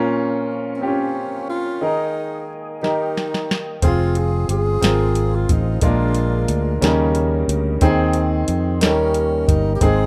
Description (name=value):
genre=slow gospel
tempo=60 BPM (dotted quarters)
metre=6/8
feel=straight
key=unclear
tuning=A4 = 442 Hz
part: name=clear grand piano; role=accompaniment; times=0.0-10.1 s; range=Ab2 to Bb4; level=-23 LUFS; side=equal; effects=none
part: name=dark French horn section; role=sustained chords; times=0.0-10.1 s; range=Eb3 to F4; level=-34 LUFS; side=equal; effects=none
part: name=percussive tonewheel organ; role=sustained chords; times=0.0-10.1 s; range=G4 to Eb6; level=-37 LUFS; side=equal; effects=none
part: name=warm tenor saxophone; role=melody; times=0.8-10.1 s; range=C4 to Ab4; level=-28 LUFS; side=equal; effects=none
part: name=soft vintage rhythm box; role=drums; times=2.8-10.0 s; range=hi-hat, kick drum, snare drum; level=-22 LUFS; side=equal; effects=none
part: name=fingered electric bass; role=bass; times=3.8-10.1 s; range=F1 to F2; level=-22 LUFS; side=equal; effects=none
room=light reverb, small room ambience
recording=rough home demo mix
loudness=-19 LUFS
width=mono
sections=0.0-10.1 A section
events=drum fill 2.8-3.8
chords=0.0 Bbm; 1.8 Ebsus4; 2.8 Eb; 3.8 Fm; 5.8 Bb7; 6.8 Eb7; 7.8 Ab/Eb; 8.8 Eb7